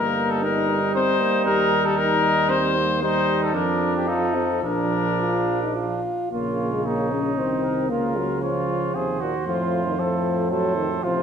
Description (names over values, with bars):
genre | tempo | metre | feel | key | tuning
classical, brass quintet | 115 BPM | 3/4 | rubato | Bb major, Bb minor from 6.3 s | A4 = 442 Hz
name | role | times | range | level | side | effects
warm trumpet | melody | 0.0-11.2 s | G4 to Db5 | -25 LUFS | left 5 dB | none
clear flugelhorn | second line | 0.0-11.2 s | D4 to A4 | -27 LUFS | right 5 dB | none
mellow French horn | accompaniment | 0.0-11.2 s | Eb3 to G4 | -26 LUFS | left 3 dB | none
warm euphonium | accompaniment | 0.0-11.2 s | A2 to G3 | -28 LUFS | right 3 dB | none
mellow tuba | bass | 0.0-11.2 s | G1 to F2 | -29 LUFS | right 4 dB | none
room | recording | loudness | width
wet recital hall reverb, RT60 1.6 s | none | -20 LUFS | side -7 dB against mid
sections
0.0-6.3 A section; 6.3-11.2 B section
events
none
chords
0.0 Eb/G; 1.5 Eb; 3.5 Bb/F; 4.1 F7; 4.6 Bb; 6.3 Bbm; 7.9 Bbm/Db; 9.5 F